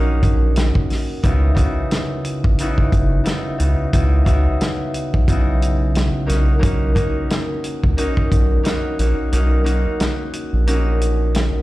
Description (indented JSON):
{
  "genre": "hip hop, boom-bap hip-hop",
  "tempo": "89 BPM",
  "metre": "4/4",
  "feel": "swing 57% on 16ths",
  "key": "C# dorian",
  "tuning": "A4 = 440 Hz",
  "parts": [
    { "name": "concert harp", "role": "accompaniment", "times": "0.0-11.6 s", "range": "C#3 to F#4", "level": "-22 LUFS", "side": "left 1 dB", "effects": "cassette tape, high-pass filter, low-pass filter, plate reverb" },
    { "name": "round analog bass", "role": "bass", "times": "0.0-11.5 s", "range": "F#1 to C#2", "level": "-16 LUFS", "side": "equal", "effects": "none" },
    { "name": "warm soul drum kit", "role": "drums", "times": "0.2-11.5 s", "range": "hi-hat, kick drum, snare drum", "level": "-20 LUFS", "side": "equal", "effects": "none" }
  ],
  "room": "little or no reverb",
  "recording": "played on a big sound system in a bare room, large studio reverb",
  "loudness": "-16 LUFS",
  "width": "side -18 dB against mid",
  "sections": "0.0-1.2 A section; 1.2-11.6 B section",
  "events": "kick muted 9.3-11.6",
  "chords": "0.0 Bmaj7 (rootless); 1.2 C#m11; 6.3 Bmaj7"
}